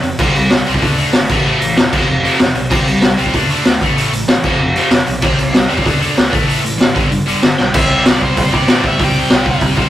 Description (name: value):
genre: punk rock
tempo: 190 BPM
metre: 4/4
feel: straight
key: C major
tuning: A4 = 440 Hz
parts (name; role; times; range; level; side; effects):
- distorted electric guitar; riff; 0.0-9.9 s; F2 to D4; -17 LUFS; equal; overdrive
- picked electric bass; bass; 0.0-9.9 s; E1 to A2; -24 LUFS; equal; none
- raw garage drum kit; drums; 0.0-9.8 s; crash cymbal, hi-hat, kick drum, snare drum; -12 LUFS; equal; none
- cranked stack guitar; melody; 7.6-9.6 s; C5 to G5; -19 LUFS; equal; overdrive
room: light reverb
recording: rough rehearsal-room recording, warm saturation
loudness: -11 LUFS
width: side -13 dB against mid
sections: 0.0-7.7 A section; 7.7-9.9 B section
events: drum fill 7.6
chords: 0.2 C5; 0.8 D5; 1.3 A5; 1.9 F5; 2.7 C5; 3.3 D5; 3.8 A5; 4.4 F5; 5.2 C; 5.9 D5; 6.3 A5; 7.0 G; 7.7 C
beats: | 0.19 0.51 0.82 1.14 | 1.45 1.77 2.08 2.40 | 2.71 3.03 3.34 3.66 | 3.97 4.29 4.60 4.92 | 5.23 5.55 5.86 6.18 | 6.49 6.81 7.12 7.43 | 7.75 8.06 8.37 8.69 | 9.00 9.31 9.62